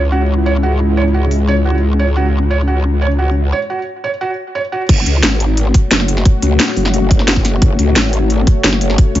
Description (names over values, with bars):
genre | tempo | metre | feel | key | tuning
dark technical drum and bass | 176 BPM | 4/4 | straight | F# minor | A4 = 445 Hz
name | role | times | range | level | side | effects
dark analog pad | sustained chords | 0.0-9.2 s | G#3 to C#5 | -20 LUFS | left 3 dB | chorus, sidechain pumping
growl bass | bass | 0.0-9.2 s | F#1 to C#2 | -14 LUFS | equal | chorus
felt-muted upright piano | arpeggios | 0.1-4.8 s | F#4 to C#5 | -20 LUFS | right 4 dB | sidechain pumping, dub echo
drum and bass drum kit | drums | 1.3-1.4, 4.9-9.2 s | crash cymbal, hi-hat, snare drum | -15 LUFS | equal | low-pass filter on hats, small room ambience, low-pass filter on cymbals, low-pass filter on snare
electronic kick drum | drums | 4.9-9.1 s | none | -11 LUFS | equal | small room ambience
room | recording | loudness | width
little or no reverb | nothing above 7.5 kHz | -12 LUFS | side -13 dB against mid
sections
0.0-4.9 A section; 4.9-9.2 B section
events
break 3.5-4.9; drop 4.9-9.2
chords
0.0 C#m; 4.9 F#m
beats
0.12 0.46 | 0.80 1.14 1.48 1.82 | 2.16 2.50 2.85 3.19 | 3.53 3.87 4.21 4.55 | 4.89 5.23 5.57 5.91 | 6.25 6.60 6.94 7.28 | 7.62 7.96 8.30 8.64 | 8.98